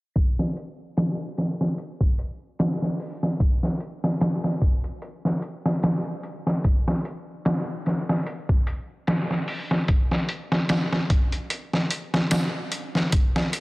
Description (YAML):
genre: trip hop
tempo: 74 BPM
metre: 4/4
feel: swing 56% on 16ths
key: none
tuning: none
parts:
  - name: trip hop sampler-style drum kit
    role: drums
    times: 0.2-13.6 s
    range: hi-hat, kick drum, snare drum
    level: -22 LUFS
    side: equal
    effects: overdrive, studio reverb
  - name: tambourine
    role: percussion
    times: 7.5-12.5 s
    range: none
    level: -42 LUFS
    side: right 3 dB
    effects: none
room: light reverb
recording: heavily compressed radio sound, low-pass filter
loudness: -22 LUFS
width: side -22 dB against mid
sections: 0.2-13.1 A section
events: filter sweep 0.2-13.1; kick drops out 11.5-13.1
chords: none